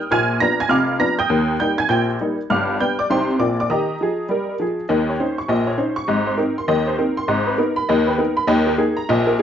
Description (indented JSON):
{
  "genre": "jazz, stride piano",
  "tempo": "201 BPM",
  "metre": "4/4",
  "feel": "swing 64% on 8ths",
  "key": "Eb major",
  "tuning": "A4 = 441 Hz",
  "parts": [
    { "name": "honky-tonk upright piano", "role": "solo", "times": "0.0-9.4 s", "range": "F1 to Bb6", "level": "-17 LUFS", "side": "equal", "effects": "none" }
  ],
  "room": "moderate club reverb, RT60 0.6 s",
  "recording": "nothing above 7.8 kHz",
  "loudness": "-17 LUFS",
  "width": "side -9 dB against mid",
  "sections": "0.0-4.9 A section; 4.9-9.4 B section",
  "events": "none",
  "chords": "0.1 Bb7b9; 1.3 Eb; 2.5 G7; 3.1 Cm; 3.4 Bb; 3.7 Eb; 4.9 Eb5; 6.1 Ab; 7.3 Abm; 8.5 Eb5"
}